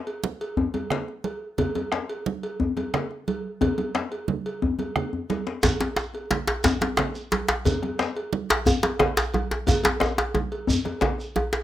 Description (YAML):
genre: west african traditional, West African drum ensemble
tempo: 119 BPM (dotted quarters)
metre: 12/8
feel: straight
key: none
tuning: none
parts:
  - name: cowbell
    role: percussion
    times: 0.1-11.5 s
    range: none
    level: -32 LUFS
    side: right 1 dB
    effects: none
  - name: djembe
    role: percussion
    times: 0.1-11.3 s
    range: none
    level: -26 LUFS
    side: left 4 dB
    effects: none
  - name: congas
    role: percussion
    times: 0.2-11.5 s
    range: none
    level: -30 LUFS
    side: right 6 dB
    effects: none
  - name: bombo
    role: percussion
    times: 0.6-11.3 s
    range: none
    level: -29 LUFS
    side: right 2 dB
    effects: none
  - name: djembe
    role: percussion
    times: 5.6-11.6 s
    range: none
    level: -23 LUFS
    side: equal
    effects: none
  - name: shekere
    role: percussion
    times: 5.6-11.3 s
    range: none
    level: -30 LUFS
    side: right 1 dB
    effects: none
room: moderate studio reverb, RT60 0.7 s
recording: rough home demo mix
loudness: -23 LUFS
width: side -13 dB against mid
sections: 0.0-5.6 A section; 5.6-11.6 B section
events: drum fill 5.0-5.6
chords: none